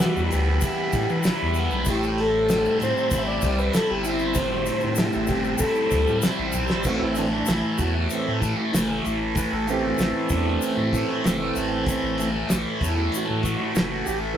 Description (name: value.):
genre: psychedelic rock.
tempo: 96 BPM.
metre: 4/4.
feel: straight.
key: A dorian.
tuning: A4 = 440 Hz.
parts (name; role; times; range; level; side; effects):
combo organ; melody; 0.0-6.2 s; E4 to E5; -25 LUFS; left 1 dB; none.
bright tonewheel organ; sustained chords; 0.0-14.4 s; E3 to F#6; -29 LUFS; right 3 dB; slow rotary speaker, overdrive.
thick fuzz guitar; riff; 0.0-14.4 s; A2 to E4; -25 LUFS; equal; distortion, phaser.
saturated sub bass; bass; 0.0-14.4 s; F#1 to E3; -28 LUFS; equal; none.
cloth-damped thuddy drum kit; drums; 0.0-14.2 s; crash cymbal, hi-hat, kick drum, snare drum, toms; -27 LUFS; equal; none.
egg shaker; percussion; 0.2-14.2 s; none; -36 LUFS; left 5 dB; none.
room: moderate studio reverb, RT60 0.6 s.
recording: rough rehearsal-room recording, tube saturation.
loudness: -21 LUFS.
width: side -10 dB against mid.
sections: 0.0-6.9 A section; 6.9-14.4 B section.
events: drum fill 6.6-6.9; tonewheel organ solo 6.9-14.4.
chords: 0.0 Em; 1.9 Am7; 6.9 Am.